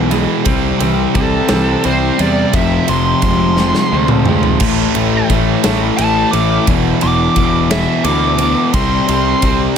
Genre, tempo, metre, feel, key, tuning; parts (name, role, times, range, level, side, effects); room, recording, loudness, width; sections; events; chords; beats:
quiet-loud alternative rock; 58 BPM (dotted quarters); 6/8; straight; A minor; A4 = 441 Hz
fingerpicked steel-string acoustic guitar; arpeggios; 0.0-4.6 s; E2 to C4; -22 LUFS; right 6 dB
cranked stack guitar; riff; 0.0-9.8 s; E2 to C4; -18 LUFS; right 15 dB; overdrive
raw garage guitar; riff; 0.0-9.8 s; E2 to C4; -18 LUFS; left 13 dB; overdrive
fuzz picked electric bass; bass; 0.0-9.7 s; E1 to E2; -18 LUFS; equal; overdrive
big rock drum kit; drums; 0.1-9.6 s; crash cymbal, kick drum, ride cymbal, snare drum, toms; -19 LUFS; equal
dark smooth lead guitar; melody; 1.2-9.8 s; A4 to D6; -18 LUFS; equal; overdrive, slapback echo
light reverb; -11 LUFS; side -7 dB against mid
0.0-9.8 A section
lead electric guitar solo 0.0-9.8; drum fill 3.6-4.6
0.5 C; 2.5 Fm; 4.6 Am; 6.7 E5; 8.7 C5
| 0.47 1.51 | 2.54 3.58 | 4.62 5.65 | 6.68 7.71 | 8.74 9.77